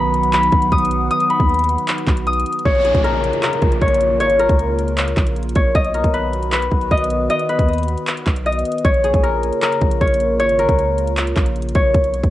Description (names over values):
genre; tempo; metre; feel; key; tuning
hip hop, trap; 155 BPM; 4/4; half-time; Bb phrygian; A4 = 440 Hz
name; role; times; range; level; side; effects
concert harp; melody; 0.0-12.3 s; Ab4 to D#6; -17 LUFS; left 2 dB; low-pass filter, cassette tape, tape echo
muted felt-like synth keys; accompaniment; 0.0-2.7 s; D#3 to B4; -24 LUFS; right 8 dB; chorus, low-pass filter, cassette tape
hollow soft pad; sustained chords; 0.0-12.3 s; Db3 to F#5; -26 LUFS; equal; chorus, cassette tape
long sustained 808-style bass; bass; 0.0-12.3 s; Ab1 to D#2; -23 LUFS; equal; none
trap drum kit; drums; 0.1-12.3 s; crash cymbal, handclaps, hi-hat, kick drum; -18 LUFS; equal; cassette tape
downlifter; sound effects; 2.7-5.8 s; none; -30 LUFS; right 1 dB; none
room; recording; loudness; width
little or no reverb; home recording on cassette, nothing above 10.5 kHz; -15 LUFS; side -14 dB against mid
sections
0.0-2.7 A section; 2.7-12.3 B section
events
none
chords
0.0 B; 2.7 Bbm; 5.8 B; 8.8 Bbm